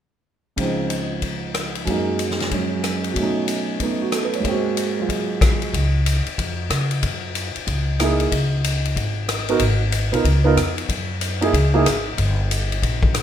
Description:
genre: jazz, big band swing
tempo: 186 BPM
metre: 4/4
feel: swing 63% on 8ths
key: Db major, Db mixolydian from 5.7 s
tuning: A4 = 440 Hz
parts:
  - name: warm grand piano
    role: accompaniment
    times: 0.6-5.8, 8.0-11.9 s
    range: Db2 to Db5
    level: -21 LUFS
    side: right 3 dB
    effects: none
  - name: swinging big-band drum kit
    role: drums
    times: 0.6-13.2 s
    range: crash cymbal, hi-hat, kick drum, ride cymbal, rim click, snare drum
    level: -24 LUFS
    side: left 2 dB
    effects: none
  - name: upright bass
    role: bass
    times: 5.7-13.2 s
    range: G1 to Db3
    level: -21 LUFS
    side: equal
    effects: none
room: light reverb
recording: minimal, uncompressed stereo recording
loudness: -19 LUFS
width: side -10 dB against mid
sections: 0.6-5.7 A section; 5.7-13.2 B section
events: none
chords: 0.6 Dbmaj7; 1.9 Gb69; 3.2 Cb7; 4.4 Ab7; 5.7 Db; 7.0 Gb13; 8.3 Db5; 9.6 Abm; 10.2 Db13; 10.9 Gb13; 12.2 Gm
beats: | 0.58 0.90 1.23 1.55 | 1.87 2.19 2.51 2.84 | 3.16 3.48 3.80 4.13 | 4.45 4.77 5.09 5.42 | 5.74 6.06 6.38 6.70 | 7.03 7.35 7.67 7.99 | 8.31 8.64 8.96 9.28 | 9.60 9.92 10.25 10.57 | 10.89 11.21 11.53 11.86 | 12.18 12.50 12.82 13.14

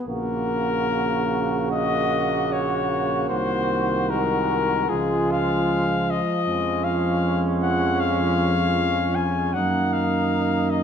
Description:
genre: classical, hymn-like piece for brass band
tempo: 77 BPM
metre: 4/4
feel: rubato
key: Db major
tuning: A4 = 440 Hz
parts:
  - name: bright trombone section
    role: accompaniment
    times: 0.0-10.8 s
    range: Ab3 to Bb3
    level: -30 LUFS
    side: left 1 dB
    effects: none
  - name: warm cornet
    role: melody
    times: 0.1-10.8 s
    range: Ab4 to Ab5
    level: -25 LUFS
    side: left 6 dB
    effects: none
  - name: warm flugelhorn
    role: second line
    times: 0.1-10.8 s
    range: Db4 to Gb4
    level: -28 LUFS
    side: right 7 dB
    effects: none
  - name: warm euphonium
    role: accompaniment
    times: 0.1-10.8 s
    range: Db3 to F3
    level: -28 LUFS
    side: right 3 dB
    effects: none
  - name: dark tuba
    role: bass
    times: 0.1-10.8 s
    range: Bb1 to Gb2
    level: -26 LUFS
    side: right 1 dB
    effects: none
room: wet recital hall reverb, RT60 1.5 s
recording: none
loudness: -20 LUFS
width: side -8 dB against mid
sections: 0.0-10.8 A section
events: none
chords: 0.1 Gb/Bb; 3.3 Ab7/C; 4.9 Db; 6.5 Db/F; 9.5 Ebm/Gb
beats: | 0.06 0.86 1.73 2.52 | 3.31 4.09 4.89 5.72 | 6.47 7.24 8.01 8.77 | 9.55 10.32

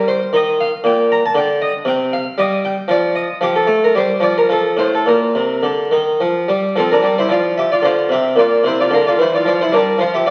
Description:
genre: classical, baroque-style suite movement for harpsichord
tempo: 103-118 BPM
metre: 3/4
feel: rubato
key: Bb major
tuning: A4 = 436 Hz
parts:
  - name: harpsichord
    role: solo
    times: 0.0-10.3 s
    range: A2 to Bb5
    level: -16 LUFS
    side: equal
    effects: none
room: wet stone room reverb, RT60 1.3 s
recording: very old 78 rpm record, vinyl crackle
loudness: -16 LUFS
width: mono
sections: 0.0-6.8 A section; 6.8-10.3 A section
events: none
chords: 0.3 Eb5; 1.9 C5; 3.4 F; 3.9 Bb69; 4.5 F; 5.0 Bb; 6.8 F5; 8.4 Bb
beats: | 0.31 0.83 1.34 | 1.85 2.37 2.88 | 3.41 3.93 4.48 | 5.04 5.62 6.19 | 6.75 7.28 7.82 | 8.36 8.89 9.43 | 9.96

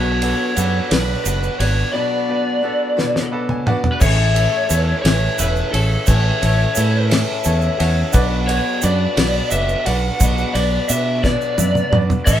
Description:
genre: folk rock and heartland rock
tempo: 58 BPM (dotted quarters)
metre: 6/8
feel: straight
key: unclear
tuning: A4 = 437 Hz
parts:
  - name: lead guitar through a small cranked amp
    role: melody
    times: 0.0-12.4 s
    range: A4 to F#5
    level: -21 LUFS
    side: equal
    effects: overdrive
  - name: bright grand piano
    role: accompaniment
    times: 0.0-12.4 s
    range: B3 to B5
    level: -28 LUFS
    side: right 2 dB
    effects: none
  - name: picked swing-style acoustic guitar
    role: accompaniment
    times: 0.0-12.4 s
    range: A2 to A4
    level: -24 LUFS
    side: left 4 dB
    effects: none
  - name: fingered electric bass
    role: bass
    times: 0.0-12.4 s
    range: E1 to B2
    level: -18 LUFS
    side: right 1 dB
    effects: none
  - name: damped 70s drum kit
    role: drums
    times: 0.2-12.4 s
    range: crash cymbal, kick drum, ride cymbal, snare drum, toms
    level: -21 LUFS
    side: equal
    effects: none
  - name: egg shaker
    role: percussion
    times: 0.2-12.4 s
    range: none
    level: -27 LUFS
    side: right 6 dB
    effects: none
room: moderate studio ambience, RT60 0.5 s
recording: band playing live in one room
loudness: -15 LUFS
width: side -10 dB against mid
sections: 0.0-4.0 A section; 4.0-12.4 A section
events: drum fill 3.0-4.0, 11.2-12.3; grand piano fill 3.0-4.0, 7.1-8.1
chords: 0.0 Bm; 4.0 A; 8.1 Bm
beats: 0.91 | 1.94 2.98 | 4.01 5.04 | 6.08 7.11 | 8.14 9.18 | 10.21 11.24 | 12.27

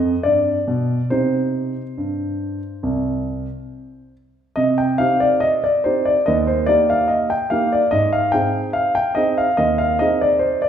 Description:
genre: classical-period piano sonatina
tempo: 71 BPM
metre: 4/4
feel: rubato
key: C minor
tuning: A4 = 440 Hz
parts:
  - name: warm grand piano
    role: solo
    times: 0.0-10.7 s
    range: C2 to G5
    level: -16 LUFS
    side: equal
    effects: none
room: wet recital hall reverb, RT60 1.5 s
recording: heard from further back in the room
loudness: -16 LUFS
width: side -8 dB against mid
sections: 0.0-4.6 A section; 4.6-10.7 A section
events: none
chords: 0.2 G; 1.1 Cm; 6.3 Eb; 7.9 Ab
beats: 0.24 | 1.11 1.98 2.84 3.71 | 4.58 5.43 6.27 7.10 | 7.92 8.74 9.58 10.41

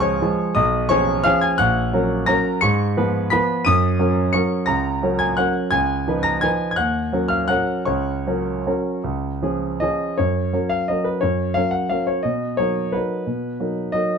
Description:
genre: classical, piano waltz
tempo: 151-186 BPM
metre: 3/4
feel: rubato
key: F# major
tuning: A4 = 435 Hz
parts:
  - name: warm grand piano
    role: solo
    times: 0.0-14.2 s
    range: A#1 to D#7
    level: -18 LUFS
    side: equal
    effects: none
room: light reverb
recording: dark, warm production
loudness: -18 LUFS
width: side -6 dB against mid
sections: 0.0-10.2 A section; 10.2-14.2 B section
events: none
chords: 0.0 C#; 0.6 C#7/B; 1.6 F#/A#; 2.6 Fdim/Ab; 3.7 F#; 5.7 C#9; 6.8 D#m7; 7.9 F#/C#; 9.1 C#; 10.2 F#; 12.2 Bmaj7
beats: 0.21 | 0.55 0.90 1.25 | 1.59 1.94 2.28 | 2.62 2.96 3.32 | 3.66 4.00 4.35 | 4.69 5.03 5.38 | 5.73 6.08 6.44 | 6.79 7.14 7.51 | 7.89 8.27 8.67 | 9.05 9.43 9.82 | 10.19 10.54 10.89 | 11.23 11.56 11.91 | 12.25 12.59 12.94 | 13.27 13.60 13.94

